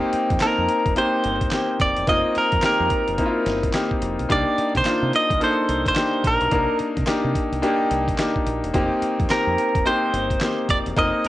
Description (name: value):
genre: R&B, new jack swing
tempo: 108 BPM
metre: 4/4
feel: swing 61% on 16ths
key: unclear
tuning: A4 = 441 Hz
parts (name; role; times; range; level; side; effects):
- bright concert grand piano; accompaniment; 0.0-11.3 s; Bb3 to A5; -22 LUFS; left 1 dB; cassette tape
- deep dub fingered electric bass; bass; 0.1-11.3 s; E1 to C3; -28 LUFS; right 1 dB; none
- dusty soul sampler-style drum kit; drums; 0.1-11.3 s; handclaps, hi-hat, kick drum, snare drum; -26 LUFS; right 1 dB; cassette tape
- direct-recorded clean electric guitar; melody; 0.4-11.3 s; Bb4 to Eb5; -21 LUFS; equal; spring reverb, cassette tape
room: moderate small room reverb, RT60 0.5 s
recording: home recording on cassette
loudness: -18 LUFS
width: side -15 dB against mid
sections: 0.0-11.3 A section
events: none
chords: 0.0 F7sus4; 4.3 Cm7; 8.7 F7sus4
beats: 0.41 0.96 1.52 | 2.07 2.63 3.19 3.74 | 4.30 4.85 5.41 5.96 | 6.52 7.07 7.63 8.19 | 8.74 9.30 9.85 10.41 | 10.96